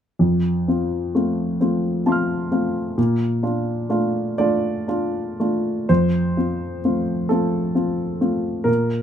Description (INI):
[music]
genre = neoclassical minimalist piano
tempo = 43 BPM (dotted quarters)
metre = 6/8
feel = rubato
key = F major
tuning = A4 = 441 Hz
[part]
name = dark grand piano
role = solo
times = 0.2-9.0 s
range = F2 to F6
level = -19 LUFS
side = equal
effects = none
[sound]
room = moderate studio ambience, RT60 0.5 s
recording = minimal, uncompressed stereo recording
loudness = -19 LUFS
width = side -9 dB against mid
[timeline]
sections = 0.2-5.9 A section; 5.9-9.0 B section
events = none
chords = 0.2 F; 3.0 Bbmaj7; 5.9 F